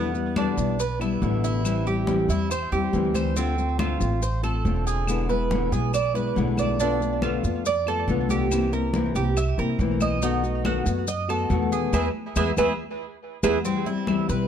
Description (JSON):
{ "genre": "latin, Cuban son and guajira", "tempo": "140 BPM", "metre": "4/4", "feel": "straight", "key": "unclear", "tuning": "A4 = 436 Hz", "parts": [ { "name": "nylon-string guitar", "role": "accompaniment", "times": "0.0-14.5 s", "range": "B2 to F#4", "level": "-26 LUFS", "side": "left 6 dB", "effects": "none" }, { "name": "Cuban tres", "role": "arpeggios", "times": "0.0-14.5 s", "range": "B3 to E5", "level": "-27 LUFS", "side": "right 5 dB", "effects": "tape echo" }, { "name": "upright bass", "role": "bass", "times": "0.0-14.5 s", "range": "E1 to F#2", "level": "-27 LUFS", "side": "right 1 dB", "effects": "none" }, { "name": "maracas", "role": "percussion", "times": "0.1-14.5 s", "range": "none", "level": "-38 LUFS", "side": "left 5 dB", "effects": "none" }, { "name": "congas", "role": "percussion", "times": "0.2-14.5 s", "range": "none", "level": "-32 LUFS", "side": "left 3 dB", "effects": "none" }, { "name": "claves", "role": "percussion", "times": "0.4-14.3 s", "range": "none", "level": "-39 LUFS", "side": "left 2 dB", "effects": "none" } ], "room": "light reverb", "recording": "dark, warm production", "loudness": "-22 LUFS", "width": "side -8 dB against mid", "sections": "0.0-13.7 A section", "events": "band accent 11.9-13.7", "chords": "0.0 Em7; 1.7 Am7; 3.4 Dm7; 5.1 E7; 6.8 Bm7b5; 8.5 C7; 10.2 B7; 11.9 E; 13.7 Cmaj7" }